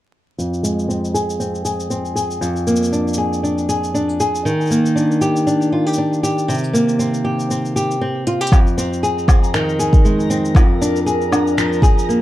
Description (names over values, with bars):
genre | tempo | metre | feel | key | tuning
folktronica | 118 BPM | 4/4 | swing 56% on 16ths | F dorian | A4 = 441 Hz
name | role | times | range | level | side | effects
flamenco guitar | arpeggios | 0.4-12.2 s | F2 to Ab4 | -16 LUFS | equal | low-pass filter, ping-pong delay, plate reverb
organic electronic drum kit | drums | 0.4-12.2 s | cabasa, finger snaps, hi-hat, woodblock | -27 LUFS | left 1 dB | none
electronic kick drum | drums | 8.5-11.9 s | none | -12 LUFS | equal | none
backwards swelling texture | texture | 9.5-12.2 s | Bb4 to Bb5 | -26 LUFS | equal | built-in reverb
room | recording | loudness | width
moderate small room reverb, RT60 0.5 s | dark, warm production, vinyl crackle | -15 LUFS | side -14 dB against mid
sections
0.4-8.5 A section; 8.5-12.2 B section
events
filter sweep on nylon-string guitar 0.4-8.5; drum fill 8.3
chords
0.4 Fm; 2.4 Bb7/F; 4.5 Ebmaj7; 6.5 C5; 8.5 Fm7; 10.6 Bb7/F